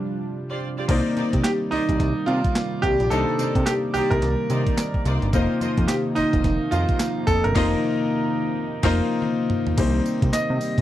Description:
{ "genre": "R&B, new jack swing", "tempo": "108 BPM", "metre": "4/4", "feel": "swing 60% on 16ths", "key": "C minor", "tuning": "A4 = 440 Hz", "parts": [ { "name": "clear concert grand piano", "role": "accompaniment", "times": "0.0-10.8 s", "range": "G3 to Eb5", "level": "-26 LUFS", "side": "left 4 dB", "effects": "none" }, { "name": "chorused pulse-width pad", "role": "sustained chords", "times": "0.0-10.8 s", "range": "C3 to D5", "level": "-28 LUFS", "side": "right 1 dB", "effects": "none" }, { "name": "warm symphonic string section", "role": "stabs", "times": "0.5-9.0 s", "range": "Eb4 to Eb5", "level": "-33 LUFS", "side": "right 1 dB", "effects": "tape echo" }, { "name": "fat analog bass", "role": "bass", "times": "0.9-10.8 s", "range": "F1 to C3", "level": "-24 LUFS", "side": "equal", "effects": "none" }, { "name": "crisp 8-bit digital drum machine", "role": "drums", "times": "0.9-10.8 s", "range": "crash cymbal, handclaps, hi-hat, kick drum, snare drum, tambourine, toms", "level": "-24 LUFS", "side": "equal", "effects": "none" }, { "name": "clear concert grand piano", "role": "melody", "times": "1.4-10.8 s", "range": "Eb4 to Eb5", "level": "-25 LUFS", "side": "right 2 dB", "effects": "none" } ], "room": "little or no reverb", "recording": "dry, close 1970s-style studio recording", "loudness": "-20 LUFS", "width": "side -13 dB against mid", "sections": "0.9-9.8 A section; 9.8-10.8 B section", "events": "break 0.0-0.9; band accent 7.6-9.8; drum fill 9.2-9.8", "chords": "0.0 G7sus4; 0.9 Cm9; 5.3 F7sus4; 9.8 Cm7" }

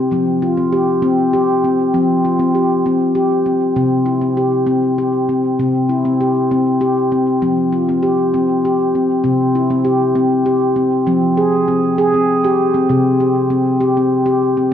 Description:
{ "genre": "world meditative, meditative tuned percussion", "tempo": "66 BPM (dotted quarters)", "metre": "6/8", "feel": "straight", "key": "unclear", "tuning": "A4 = 440 Hz", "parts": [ { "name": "handpan", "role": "solo", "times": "0.0-14.7 s", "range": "C3 to Ab4", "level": "-13 LUFS", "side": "left 1 dB", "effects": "diffuse ambient delay" } ], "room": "wet recital hall reverb, RT60 1.3 s, small room ambience", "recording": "dark, warm production", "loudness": "-13 LUFS", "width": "side -9 dB against mid", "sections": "0.0-11.1 A section; 11.1-14.7 B section", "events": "none", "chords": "0.1 F5; 3.8 C5; 7.4 F5; 9.2 C5; 11.1 Fm; 12.9 C5" }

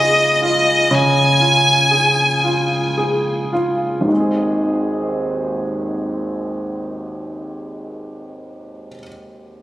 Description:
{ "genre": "six-eight pop ballad", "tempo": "34-42 BPM (dotted quarters)", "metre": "6/8", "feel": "straight", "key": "Ab major", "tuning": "A4 = 440 Hz", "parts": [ { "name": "clear violin", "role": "melody", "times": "0.0-3.0 s", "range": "Eb5 to Ab5", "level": "-14 LUFS", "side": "equal", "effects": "digital delay" }, { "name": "clear upright piano", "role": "accompaniment", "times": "0.0-9.6 s", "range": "Ab1 to Ab4", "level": "-19 LUFS", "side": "equal", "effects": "none" } ], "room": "moderate lush hall reverb, RT60 2.6 s", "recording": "recorded on a phone in the room, studio reverb", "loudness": "-14 LUFS", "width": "side -14 dB against mid", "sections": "0.0-4.1 A section; 4.1-7.6 B section", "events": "slowing down 0.0-4.1", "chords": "0.0 Db; 4.1 Ab" }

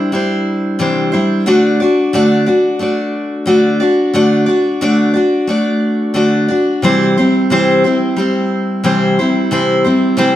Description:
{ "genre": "rock", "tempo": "89 BPM", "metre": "4/4", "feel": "straight", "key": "D mixolydian", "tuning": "A4 = 440 Hz", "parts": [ { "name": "picked steel-string acoustic guitar", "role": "solo", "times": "0.0-10.4 s", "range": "C3 to D5", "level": "-11 LUFS", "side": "equal", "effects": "none" } ], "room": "wet stone room reverb, RT60 1.3 s", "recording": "band playing live in one room", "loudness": "-11 LUFS", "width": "side -12 dB against mid", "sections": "0.0-10.4 A section", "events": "none", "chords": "0.0 Cadd9; 1.5 D; 6.8 C" }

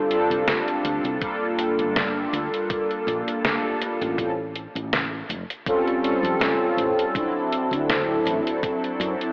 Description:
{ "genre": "vaporwave", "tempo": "81 BPM", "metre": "4/4", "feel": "swing 55% on 16ths", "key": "G dorian", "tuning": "A4 = 440 Hz", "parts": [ { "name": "mellow synth brass", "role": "accompaniment", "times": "0.0-9.3 s", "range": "F#3 to A4", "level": "-25 LUFS", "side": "equal", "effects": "subtle chorus, tape echo" }, { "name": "detuned 8-bit digital drum machine", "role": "drums", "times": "0.1-9.3 s", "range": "hi-hat, snare drum", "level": "-29 LUFS", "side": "equal", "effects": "gated reverb" }, { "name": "woody fretless electric bass", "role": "bass", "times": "0.3-9.1 s", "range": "E#1 to F#2", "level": "-34 LUFS", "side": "equal", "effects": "none" }, { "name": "electronic kick drum", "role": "drums", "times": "1.2-8.8 s", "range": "none", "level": "-33 LUFS", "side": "equal", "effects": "none" } ], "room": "moderate huge ambient reverb, RT60 4.6 s", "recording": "cassette tape, AM radio sound", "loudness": "-24 LUFS", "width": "mono", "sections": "0.0-9.3 A section", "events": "none", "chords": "0.0 F69; 1.2 Gm9; 4.2 A7alt; 7.1 D9" }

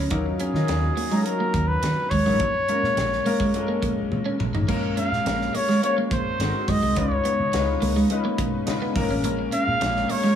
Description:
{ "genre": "polished 1980s jazz-funk pop", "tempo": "105 BPM", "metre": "4/4", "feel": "straight", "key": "unclear", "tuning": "A4 = 440 Hz", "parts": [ { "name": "warm grand piano", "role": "accompaniment", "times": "0.0-10.4 s", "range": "Gb3 to Bb5", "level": "-27 LUFS", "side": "left 4 dB", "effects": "analog chorus" }, { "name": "electric guitar at the edge of break-up", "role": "riff", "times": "0.0-10.4 s", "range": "Ab3 to Eb4", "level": "-27 LUFS", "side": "right 4 dB", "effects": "analog chorus" }, { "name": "vintage muted fingered electric bass", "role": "bass", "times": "0.0-10.0 s", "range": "Gb1 to Eb3", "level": "-27 LUFS", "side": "right 1 dB", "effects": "none" }, { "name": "crisp fusion drum kit", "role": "drums", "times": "0.1-10.3 s", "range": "crash cymbal, hi-hat, kick drum, snare drum, toms", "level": "-30 LUFS", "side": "equal", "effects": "gated reverb" }, { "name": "warm flugelhorn", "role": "melody", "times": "0.4-10.4 s", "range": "Ab4 to F5", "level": "-25 LUFS", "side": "left 1 dB", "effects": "digital delay" } ], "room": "light reverb, studio reverb", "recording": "small room ambience", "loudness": "-20 LUFS", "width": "side -9 dB against mid", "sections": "0.0-4.7 A section; 4.7-10.4 B section", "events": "drum fill 4.1-4.7", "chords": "0.1 Ebm9; 2.4 Bbm7; 6.4 Ab7; 7.0 Db7; 9.0 Bbm7" }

